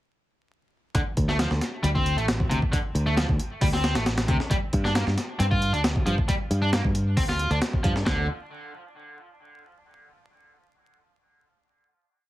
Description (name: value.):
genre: breakbeat, breaks.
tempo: 135 BPM.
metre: 4/4.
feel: straight.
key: D minor.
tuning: A4 = 441 Hz.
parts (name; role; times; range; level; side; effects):
distorted electric guitar; riff; 0.9-8.3 s; C3 to F4; -29 LUFS; equal; distortion, tube saturation, dub echo.
breakbeat sampler-style drum kit; drums; 0.9-8.2 s; hi-hat, kick drum, snare drum; -25 LUFS; equal; overdrive.
fingered electric bass; bass; 1.2-8.3 s; A1 to G2; -25 LUFS; equal; none.
room: little or no reverb.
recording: heavily compressed radio sound, multiband compression, vinyl crackle.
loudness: -22 LUFS.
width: side -15 dB against mid.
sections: 0.9-8.1 drop; 8.1-9.8 final note.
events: drop 0.9-8.1.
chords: 0.9 D7(no3); 4.5 G7(no3); 8.1 N.C..